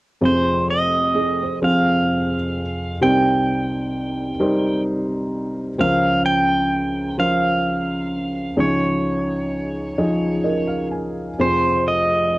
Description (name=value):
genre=acoustic folk-pop ballad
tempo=43 BPM (dotted quarters)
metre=6/8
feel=straight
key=F minor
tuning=A4 = 441 Hz
part: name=felt-muted upright piano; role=accompaniment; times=0.2-12.4 s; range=F1 to Ab5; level=-20 LUFS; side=equal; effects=cassette tape
part: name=pedal steel guitar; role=melody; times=0.3-12.4 s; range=C5 to G5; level=-21 LUFS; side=right 1 dB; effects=cassette tape
part: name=felt-muted upright piano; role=arpeggios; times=1.1-2.6, 10.4-11.7 s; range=Ab4 to C5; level=-28 LUFS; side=right 6 dB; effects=cassette tape
room=wet booth ambience, RT60 0.2 s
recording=home recording on cassette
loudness=-18 LUFS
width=side -19 dB against mid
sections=0.2-12.4 A section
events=none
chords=0.2 Fm; 3.0 Cm7; 5.8 Bbmadd9/Db; 8.6 Dbadd9; 11.4 Fm